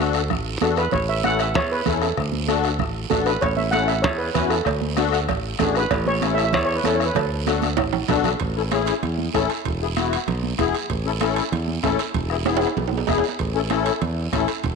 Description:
latin, cumbia; 192 BPM; 4/4; straight; A major; A4 = 438 Hz
steel pan; melody; 0.0-8.1 s; A4 to F#5; -24 LUFS; right 3 dB
musette accordion; accompaniment; 0.0-14.5 s; B3 to A4; -24 LUFS; left 10 dB
modern bright fingered electric bass; bass; 0.0-14.8 s; E1 to E2; -25 LUFS; equal
bombo; percussion; 0.1-14.8 s; -29 LUFS; left 1 dB
guiro; percussion; 0.1-14.8 s; -33 LUFS; right 13 dB
congas; percussion; 0.3-14.8 s; -30 LUFS; right 11 dB
cowbell and timbales; percussion; 3.4-14.8 s; -29 LUFS; right 12 dB
moderate echo chamber reverb, RT60 1.7 s, small room ambience; 1960s-style stereo with parts hard left and right; -19 LUFS; side -4 dB against mid
0.0-8.4 A section; 8.4-14.8 B section
drum fill 7.6-8.4, 12.5-13.4
0.0 D; 0.9 A; 2.2 D; 3.4 A; 4.7 D; 5.9 A; 7.2 D; 8.4 A; 9.7 E; 10.9 A; 12.2 E; 13.4 A

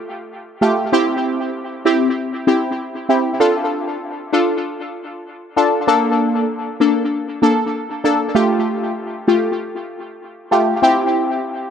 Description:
dancehall; 97 BPM; 4/4; swing 56% on 16ths; A4 = 440 Hz
synth brass stab; solo; 0.6-11.4 s; A3 to A4; -16 LUFS; equal; chorus, phaser, dub echo
wet spring reverb, RT60 1.6 s, digital ambience; echo-heavy mix; -15 LUFS; side -8 dB against mid
0.0-11.7 A section
0.0 Fadd9; 0.9 C; 3.4 Dm; 5.9 Bbmaj7; 8.3 Fadd9; 10.8 C

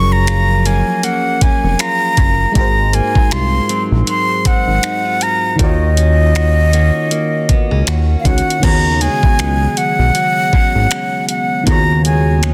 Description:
contemporary R&B; 79 BPM; 4/4; swing 58% on 16ths; A4 = 437 Hz
breathy concert flute; melody; 0.0-12.5 s; Eb5 to Db6; -19 LUFS; equal; delay
FM electric piano; accompaniment; 0.0-12.5 s; Eb3 to Db5; -24 LUFS; equal; chorus, phaser
direct-recorded clean electric guitar; arpeggios; 0.0-12.5 s; Ab2 to Gb4; -26 LUFS; equal; spring reverb
fat analog bass; bass; 0.0-12.5 s; F1 to Eb2; -16 LUFS; equal
smooth R&B drum kit; drums; 0.3-12.5 s; crash cymbal, finger snaps, hi-hat, kick drum; -17 LUFS; equal; soft clipping on snare
digital ambience; dense, heavily limited modern master; -14 LUFS; mono
0.0-8.6 A section; 8.6-12.5 B section
0.0 Gbmaj7; 2.6 Ab13; 5.6 Ebm7; 8.6 Db7sus4

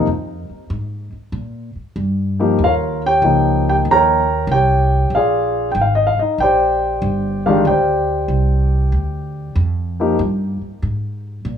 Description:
jazz piano trio; 95 BPM; 4/4; swing 67% on 8ths; Bb mixolydian; A4 = 440 Hz
dark concert grand piano; melody; 0.0-10.2 s; Eb3 to Bb5; -16 LUFS; left 1 dB
upright bass; bass; 0.0-11.6 s; G1 to Bb2; -19 LUFS; right 1 dB
light reverb, small room ambience; rough home demo mix; -14 LUFS; side -8 dB against mid
0.0-11.6 A section
0.1 Fm; 1.3 Bb5; 2.6 Eb13; 5.1 Bb13; 10.2 N.C.

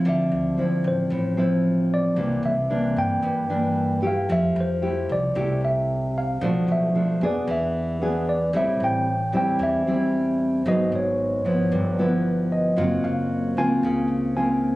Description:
bossa nova; 113 BPM; 4/4; straight; A4 = 440 Hz
tine electric piano; melody; 0.0-14.8 s; C5 to Ab5; -26 LUFS; equal
nylon-string guitar; accompaniment; 0.0-14.8 s; G2 to Ab4; -22 LUFS; equal
upright bass; bass; 0.0-14.8 s; Gb1 to G2; -28 LUFS; equal
light reverb; recorded on a phone in the room, club reverb; -20 LUFS; side -18 dB against mid
0.0-8.5 A section; 8.5-14.8 B section
0.0 Dm9; 2.2 C9; 4.3 Fmaj9; 6.4 Bm7b5; 7.5 E7; 8.5 Am7; 10.7 Abm7; 11.7 G6; 12.8 Gbmaj9#11

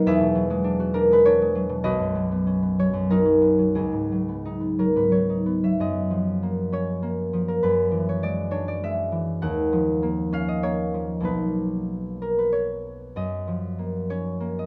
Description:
classical, solo harp piece; 87-102 BPM; 3/4; rubato; F# mixolydian; A4 = 443 Hz
concert harp; solo; 0.0-14.7 s; B1 to F#5; -24 LUFS; equal
light reverb; close, detailed microphones; -24 LUFS; mono
0.0-5.8 A section; 5.8-14.7 B section
0.1 E9; 1.9 Badd9; 3.8 C#9sus4; 5.8 F#maj7; 7.6 E9/F#; 9.4 D#m9; 11.3 Bmaj7; 13.2 F#maj7

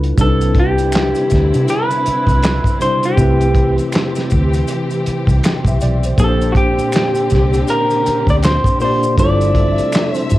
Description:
R&B, neo-soul; 80 BPM; 4/4; swing 61% on 16ths; C major; A4 = 441 Hz
tine electric piano; accompaniment; 0.0-10.4 s; Bb2 to G5; -20 LUFS; equal; medium stereo tremolo, plate reverb
vintage muted fingered electric bass; bass; 0.0-10.4 s; G1 to C3; -16 LUFS; equal
warm soul drum kit; drums; 0.0-10.4 s; handclaps, hi-hat, kick drum, snare drum; -17 LUFS; equal; cassette tape
electric guitar through a small old amp; melody; 0.2-10.4 s; F#4 to D5; -17 LUFS; equal; plate reverb
warm symphonic string section; sustained chords; 0.2-10.4 s; C3 to E5; -24 LUFS; equal; plate reverb
maracas and finger snaps; percussion; 0.2-10.4 s; -33 LUFS; left 1 dB
light reverb; home recording on cassette; -12 LUFS; side -16 dB against mid
0.2-10.4 A section
0.2 Cmaj9; 3.2 Am9/C; 6.2 Bb69; 9.2 G13sus4

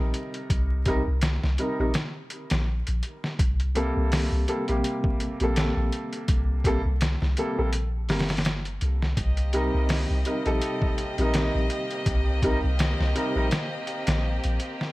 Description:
trip hop; 83 BPM; 4/4; swing 56% on 16ths; C dorian; A4 = 439 Hz
warm upright piano; accompaniment; 0.0-13.5 s; C3 to Bb4; -28 LUFS; equal; harmonic tremolo, vintage 12-bit sampler grit, tape echo
soft 808-style bass; bass; 0.0-14.6 s; G1 to C2; -25 LUFS; equal; tube saturation
trip hop sampler-style drum kit; drums; 0.1-14.9 s; hi-hat, kick drum, snare drum; -28 LUFS; equal; overdrive
rich studio violin section; sustained chords; 9.2-14.9 s; Bb3 to Eb5; -32 LUFS; left 1 dB
little or no reverb; vinyl crackle; -23 LUFS; side -19 dB against mid
0.0-14.9 A section
0.0 Cm7; 3.4 Gmadd9; 9.2 Cm7

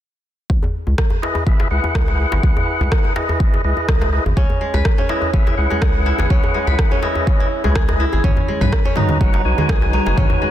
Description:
afro house; 124 BPM; 4/4; swing 54% on 16ths; C# minor; A4 = 440 Hz
round analog bass; bass; 0.5-10.3 s; F#1 to C#2; -19 LUFS; equal; sidechain pumping
electronic kick drum; drums; 0.5-10.3 s; -17 LUFS; equal; overdrive
djembe; percussion; 0.6-10.4 s; -26 LUFS; left 1 dB
deep house drum kit; drums; 1.0-10.3 s; rim click, toms; -26 LUFS; right 1 dB; overdrive
tonewheel organ; stabs; 1.2-10.5 s; D#4 to G#5; -22 LUFS; left 2 dB; overdrive, fast rotary speaker, sidechain pumping, tape echo
kora; arpeggios; 4.4-10.5 s; G#3 to B4; -22 LUFS; right 1 dB; sidechain pumping, tape echo
congas; percussion; 8.2-10.3 s; -24 LUFS; right 2 dB
little or no reverb; dense, heavily limited modern master; -15 LUFS; side -12 dB against mid
0.5-10.5 A section
0.5 C#m7; 8.2 B

